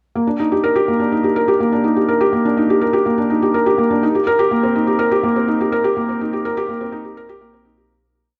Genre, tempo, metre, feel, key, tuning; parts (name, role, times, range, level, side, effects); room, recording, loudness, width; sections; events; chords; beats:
electronica; 124 BPM; 4/4; straight; C minor; A4 = 441 Hz
felt-muted upright piano; solo; 0.2-7.9 s; Bb3 to Bb4; -17 LUFS; equal
wet echo chamber reverb, RT60 1.9 s; -17 LUFS; mono
0.2-7.9 build
build-up 0.2-7.9; fade-out 5.3-7.9
| 0.15 0.64 1.12 1.60 | 2.09 2.57 3.06 3.54 | 4.02 4.51 4.99 5.47 | 5.96 6.44 6.93 7.41